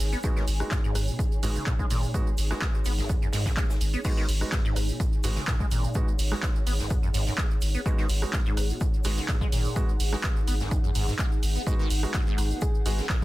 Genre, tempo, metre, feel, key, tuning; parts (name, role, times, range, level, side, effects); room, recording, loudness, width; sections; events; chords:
acid house; 126 BPM; 4/4; straight; G# minor; A4 = 440 Hz
saturated sub bass; bass; 0.0-13.0 s; G#1 to G#2; -27 LUFS; equal; sidechain pumping
punchy analog drum machine; drums; 0.0-13.2 s; crash cymbal, handclaps, hi-hat, rim click, shaker; -33 LUFS; right 2 dB
shaker and snare drum; drums; 0.0-13.2 s; -44 LUFS; left 1 dB; high-pass filter on snare, sidechain pumping on perc, high-pass filter on perc, high-pass filter on room
granular cloud pad; texture; 0.0-13.2 s; D#4 to G#5; -38 LUFS; equal; built-in reverb, sidechain pumping
liquid acid bass; riff; 0.1-13.2 s; G#1 to B3; -34 LUFS; equal; phaser, overdrive, ensemble chorus, tape echo
warm grand piano; stabs; 0.2-13.0 s; G#3 to F#4; -37 LUFS; right 2 dB; tape echo
electronic kick drum; drums; 0.2-13.2 s; -27 LUFS; equal
soft struck synth lead; melody; 12.6-13.1 s; G#4; -36 LUFS; left 2 dB; chorus
light reverb; dense, heavily limited modern master; -24 LUFS; side -17 dB against mid
0.0-4.0 A section; 4.0-13.2 B section
drop 4.0-13.2
0.0 G#m7